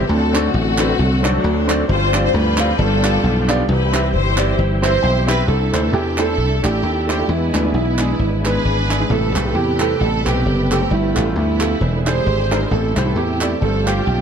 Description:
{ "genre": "uptempo gospel", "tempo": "133 BPM", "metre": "4/4", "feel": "swing 57% on 8ths", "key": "C major", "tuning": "A4 = 440 Hz", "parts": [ { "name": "warm studio string section", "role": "melody", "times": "0.0-14.2 s", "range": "F#3 to C5", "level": "-21 LUFS", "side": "equal", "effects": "none" }, { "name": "clear grand piano", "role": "accompaniment", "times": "0.0-14.2 s", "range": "G2 to C6", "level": "-22 LUFS", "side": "equal", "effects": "none" }, { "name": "bright tonewheel organ", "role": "sustained chords", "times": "0.0-14.2 s", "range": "C3 to B4", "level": "-26 LUFS", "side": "right 2 dB", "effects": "fast rotary speaker, overdrive, chorus vibrato" }, { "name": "dry thumbed slap bass", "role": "bass", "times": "0.0-14.2 s", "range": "E1 to E2", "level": "-19 LUFS", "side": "equal", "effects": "none" }, { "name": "group handclap", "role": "percussion", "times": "0.4-14.0 s", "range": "none", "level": "-27 LUFS", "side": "right 3 dB", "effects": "none" }, { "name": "warm baby grand piano", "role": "melody", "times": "4.8-14.2 s", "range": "E4 to C5", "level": "-24 LUFS", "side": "right 4 dB", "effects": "none" }, { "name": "mellow French horn section", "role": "sustained chords", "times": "5.5-14.2 s", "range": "C3 to B#4", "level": "-34 LUFS", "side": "equal", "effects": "none" } ], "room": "light reverb", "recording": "dark, warm production", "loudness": "-15 LUFS", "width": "side -7 dB against mid", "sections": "0.0-5.5 A section; 5.5-14.2 B section", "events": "grand piano fill 4.6-5.5", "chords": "0.1 D7; 1.9 G7sus4; 2.8 G7; 3.7 Cmaj7; 5.5 C69; 7.3 E7; 9.1 Am9; 10.9 G9; 11.8 E7alt; 12.7 Am7; 13.6 G9sus4", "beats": "| 0.09 0.54 0.99 1.44 | 1.89 2.34 2.79 3.23 | 3.69 4.13 4.58 5.04 | 5.49 5.94 6.39 6.84 | 7.29 7.74 8.19 8.64 | 9.10 9.55 10.00 10.45 | 10.90 11.35 11.81 12.26 | 12.71 13.16 13.61 14.06" }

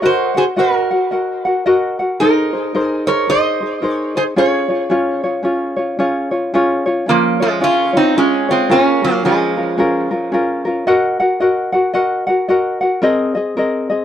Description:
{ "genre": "Hawaiian", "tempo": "111 BPM", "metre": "4/4", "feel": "swing 61% on 8ths", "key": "Db major", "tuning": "A4 = 440 Hz", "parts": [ { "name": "metal-body resonator slide guitar", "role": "melody", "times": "0.0-10.1 s", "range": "F3 to Eb5", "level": "-16 LUFS", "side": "right 2 dB", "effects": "tape echo" }, { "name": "tenor ukulele", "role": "accompaniment", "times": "0.0-14.0 s", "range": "C4 to Gb5", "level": "-15 LUFS", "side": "left 1 dB", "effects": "none" } ], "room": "light reverb", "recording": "dry, close 1970s-style studio recording", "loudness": "-13 LUFS", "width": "side -10 dB against mid", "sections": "0.0-6.5 A section; 6.5-14.0 B section", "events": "none", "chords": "0.0 Ebm/Gb; 2.2 Abadd9; 4.4 Db; 8.7 Bbm7; 10.9 Ebm; 13.0 Abadd9", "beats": "| 0.03 0.57 1.11 1.65 | 2.20 2.74 3.28 3.82 | 4.37 4.91 5.45 5.99 | 6.53 7.07 7.61 8.15 | 8.69 9.23 9.78 10.32 | 10.86 11.40 11.94 12.48 | 13.02 13.56" }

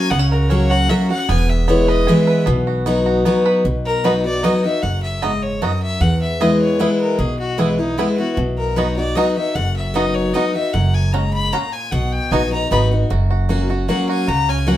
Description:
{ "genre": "bluegrass", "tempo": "152 BPM", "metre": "3/4", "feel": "straight", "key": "B major", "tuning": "A4 = 439 Hz", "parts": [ { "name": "bluegrass banjo", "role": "melody", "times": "0.0-14.8 s", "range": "B3 to B4", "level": "-24 LUFS", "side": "right 6 dB", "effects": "none" }, { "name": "clear fiddle", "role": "melody", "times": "0.0-14.8 s", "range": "D#4 to B5", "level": "-23 LUFS", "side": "left 2 dB", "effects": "none" }, { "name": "picked steel-string acoustic guitar", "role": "accompaniment", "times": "0.0-14.8 s", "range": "E2 to F#4", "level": "-18 LUFS", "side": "left 1 dB", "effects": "none" }, { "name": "upright bass", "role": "bass", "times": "0.1-14.8 s", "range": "E1 to E2", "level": "-20 LUFS", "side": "right 1 dB", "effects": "none" } ], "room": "moderate studio reverb, RT60 0.6 s", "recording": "band playing live in one room", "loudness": "-15 LUFS", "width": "side -13 dB against mid", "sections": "0.0-3.6 A section; 3.6-13.1 B section; 13.1-14.8 C section", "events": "fiddle solo 0.0-3.6", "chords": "0.0 F#; 1.3 E; 2.5 B; 6.0 E; 8.4 B; 10.7 F#; 11.9 B; 13.1 F#", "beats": "| 0.11 0.50 0.89 | 1.29 1.68 2.07 | 2.47 2.86 3.25 | 3.65 4.04 4.43 | 4.83 5.22 5.61 | 6.01 6.40 6.80 | 7.19 7.58 7.98 | 8.37 8.77 9.16 | 9.55 9.95 10.34 | 10.74 11.13 11.53 | 11.92 12.31 12.71 | 13.10 13.49 13.89 | 14.28 14.68" }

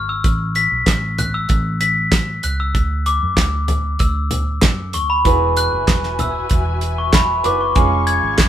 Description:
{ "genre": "piano-driven pop", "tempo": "96 BPM", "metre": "4/4", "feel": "straight", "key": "A major", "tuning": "A4 = 439 Hz", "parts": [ { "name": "vintage muted fingered electric bass", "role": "bass", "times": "0.0-8.5 s", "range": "E1 to F#2", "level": "-22 LUFS", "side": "right 1 dB", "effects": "none" }, { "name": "glockenspiel with soft plastic mallets", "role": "melody", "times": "0.1-8.5 s", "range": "B5 to B6", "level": "-19 LUFS", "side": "left 2 dB", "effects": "none" }, { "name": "damped 70s drum kit", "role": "drums", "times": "0.2-8.5 s", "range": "handclaps, hi-hat, kick drum, snare drum, toms", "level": "-16 LUFS", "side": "right 1 dB", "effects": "none" }, { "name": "bright upright piano", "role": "accompaniment", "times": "5.2-8.5 s", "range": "E3 to B4", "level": "-22 LUFS", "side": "right 3 dB", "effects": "none" }, { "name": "muted studio string section", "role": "sustained chords", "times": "5.2-8.5 s", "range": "F#4 to C#6", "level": "-29 LUFS", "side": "left 2 dB", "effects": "none" } ], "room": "moderate studio reverb, RT60 0.6 s", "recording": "band playing live in one room", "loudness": "-15 LUFS", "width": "side -11 dB against mid", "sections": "0.0-8.5 A section", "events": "none", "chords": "0.2 Asus2; 2.8 Dadd9; 5.3 Eadd9; 7.8 C#/E#", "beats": "| 0.24 0.87 1.50 2.12 | 2.75 3.38 4.00 4.63 | 5.26 5.88 6.51 7.14 | 7.76 8.39" }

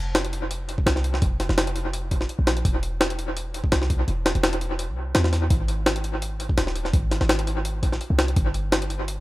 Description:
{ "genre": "drum and bass, jungle", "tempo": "168 BPM", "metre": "4/4", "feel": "swing 53% on 16ths", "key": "unclear", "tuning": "A4 = 440 Hz", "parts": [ { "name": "warm 808-style bass", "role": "bass", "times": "0.0-9.2 s", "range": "Eb1 to E2", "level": "-25 LUFS", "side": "equal", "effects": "none" }, { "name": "jungle sampler-style drum kit", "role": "drums", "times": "0.1-9.2 s", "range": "hi-hat, kick drum, snare drum", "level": "-23 LUFS", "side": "equal", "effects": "studio reverb, dub echo" } ], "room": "light reverb", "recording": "echo-heavy mix", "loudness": "-21 LUFS", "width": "side -18 dB against mid", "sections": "0.0-9.2 A section", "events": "none", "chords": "none", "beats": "0.15 0.51 0.86 | 1.22 1.58 1.94 2.29 | 2.65 3.01 3.36 3.72 | 4.08 4.43 4.79 5.15 | 5.51 5.86 6.22 6.58 | 6.93 7.29 7.65 8.01 | 8.36 8.72 9.08" }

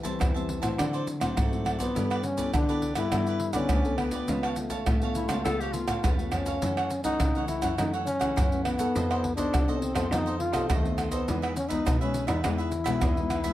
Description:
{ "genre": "samba and choro", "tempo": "103 BPM", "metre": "4/4", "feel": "straight", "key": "unclear", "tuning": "A4 = 440 Hz", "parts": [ { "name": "breathy trombone", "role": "melody", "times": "0.0-13.5 s", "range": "E3 to F4", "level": "-30 LUFS", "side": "left 2 dB", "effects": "plate reverb" }, { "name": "cavaquinho", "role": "accompaniment", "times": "0.0-13.5 s", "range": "D#4 to A5", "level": "-36 LUFS", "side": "right 4 dB", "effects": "none" }, { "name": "nylon-string guitar", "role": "accompaniment", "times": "0.0-13.5 s", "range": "F#2 to A4", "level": "-34 LUFS", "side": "left 4 dB", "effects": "none" }, { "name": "rich cello", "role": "bass", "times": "0.0-13.5 s", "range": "C#2 to D3", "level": "-32 LUFS", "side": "equal", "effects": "none" }, { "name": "maracas, surdo, pandeiro and tamborim", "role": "percussion", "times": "0.0-13.5 s", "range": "none", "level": "-29 LUFS", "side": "right 1 dB", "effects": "none" }, { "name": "clear clarinet", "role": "second line", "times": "5.2-6.2 s", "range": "E4 to A4", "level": "-33 LUFS", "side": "left 3 dB", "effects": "none" } ], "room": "moderate small room reverb, RT60 0.6 s", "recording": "none", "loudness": "-25 LUFS", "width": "side -14 dB against mid", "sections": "0.0-13.5 A section", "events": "none", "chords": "0.0 Am7; 0.8 D9; 2.0 G69; 4.3 C#7b13; 6.6 F#m7; 8.9 F7#11; 11.3 Emaj7", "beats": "0.20 0.79 1.37 | 1.95 2.53 3.12 3.70 | 4.28 4.87 5.45 6.03 | 6.62 7.20 7.78 8.36 | 8.95 9.53 10.11 10.70 | 11.28 11.86 12.44 13.03" }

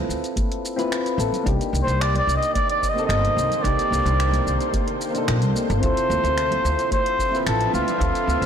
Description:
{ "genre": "sunset chillout", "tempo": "110 BPM", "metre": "4/4", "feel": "straight", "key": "unclear", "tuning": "A4 = 440 Hz", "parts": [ { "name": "soft electric-piano-like synth keys", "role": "accompaniment", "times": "0.0-8.5 s", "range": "Bb3 to E5", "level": "-27 LUFS", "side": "moving between left 6 dB and right 5 dB", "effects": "chorus, auto-pan, ping-pong delay" }, { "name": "upright bass", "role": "bass", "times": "0.1-8.5 s", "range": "G1 to D2", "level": "-23 LUFS", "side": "equal", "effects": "none" }, { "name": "deep house drum kit", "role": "drums", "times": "0.1-8.5 s", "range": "finger snaps, hi-hat, shaker", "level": "-32 LUFS", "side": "equal", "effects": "soft clipping on snare" }, { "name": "electronic kick drum", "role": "drums", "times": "0.4-8.1 s", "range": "none", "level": "-26 LUFS", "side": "equal", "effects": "none" }, { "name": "congas", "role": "percussion", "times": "0.4-8.4 s", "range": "none", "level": "-35 LUFS", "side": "right 2 dB", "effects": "none" }, { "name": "shimmering ambient pad", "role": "sustained chords", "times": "2.4-8.5 s", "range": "C3 to E5", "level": "-29 LUFS", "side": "right 2 dB", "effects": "chorus, built-in reverb" }, { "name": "warm flugelhorn", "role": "melody", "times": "1.8-8.5 s", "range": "F4 to Eb5", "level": "-22 LUFS", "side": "equal", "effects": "ping-pong delay" } ], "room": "light reverb", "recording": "blown-out, overdriven recording, overdrive", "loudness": "-19 LUFS", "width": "side -8 dB against mid", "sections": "0.0-8.5 A section", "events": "none", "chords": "0.0 Dm9 (rootless); 1.5 Cm9; 5.8 Dm9", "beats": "0.37 0.91 | 1.46 2.00 2.55 3.10 | 3.64 4.19 4.73 5.28 | 5.82 6.37 6.91 7.46 | 8.01" }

